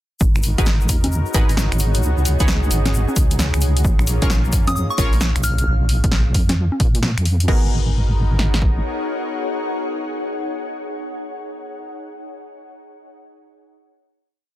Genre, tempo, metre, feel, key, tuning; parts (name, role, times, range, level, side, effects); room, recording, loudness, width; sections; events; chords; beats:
UK garage, two-step garage; 132 BPM; 4/4; swing 65% on 16ths; G# dorian; A4 = 442 Hz
warm analog pad; sustained chords; 0.2-11.9 s; A#3 to A#4; -31 LUFS; left 2 dB; lush chorus, sidechain pumping
deep soft wobble bass; bass; 0.2-8.8 s; G#1 to A#2; -18 LUFS; equal; chorus
punchy analog drum machine; drums; 0.2-8.8 s; kick drum, snare drum; -18 LUFS; equal
egg shaker; percussion; 0.2-5.6 s; -31 LUFS; left 4 dB
ethereal airy pad; texture; 1.1-11.9 s; D#4 to F#5; -29 LUFS; left 1 dB; ensemble chorus, built-in reverb, sidechain pumping
punchy analog drum machine; drums; 0.4-7.6 s; congas, crash cymbal, finger snaps, hi-hat, snare drum; -24 LUFS; equal
punchy chord stab; stabs; 0.6-12.1 s; B3 to C#5; -27 LUFS; equal; chorus, dub echo
soft synth bell; melody; 4.7-5.6 s; C#6 to E#6; -26 LUFS; left 1 dB; chorus, dub echo
little or no reverb; dense, heavily limited modern master; -16 LUFS; side -14 dB against mid
0.2-7.5 drop; 7.5-11.1 final chord
drop 0.2-7.5
0.2 G#m9; 2.0 C#9sus4; 3.8 A#m7; 5.7 A#5; 7.5 G#m9
| 0.21 0.66 1.12 1.57 | 2.03 2.48 2.94 3.39 | 3.85 4.30 4.75 5.21 | 5.66 6.12 6.57 7.03 | 7.48 7.94 8.39 8.85 | 9.30 9.75 10.21 10.66